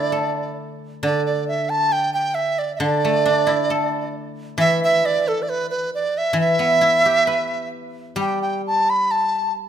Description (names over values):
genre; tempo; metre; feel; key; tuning
chinese traditional, Chinese chamber ensemble; 68 BPM; 2/4; rubato; D zhi mode; A4 = 441 Hz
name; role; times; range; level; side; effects
mellow large dizi; melody; 0.0-9.5 s; A4 to B5; -19 LUFS; right 2 dB; none
guzheng; accompaniment; 0.0-9.7 s; D3 to B4; -24 LUFS; left 1 dB; none
room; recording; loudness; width
moderate recital hall reverb, RT60 1.7 s; minimal, uncompressed stereo recording; -17 LUFS; side -9 dB against mid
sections
0.0-1.1 A section; 1.1-9.7 B section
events
none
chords
none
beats
0.14 | 1.05 1.95 | 2.83 3.71 | 4.60 5.48 | 6.36 7.25 | 8.17 9.07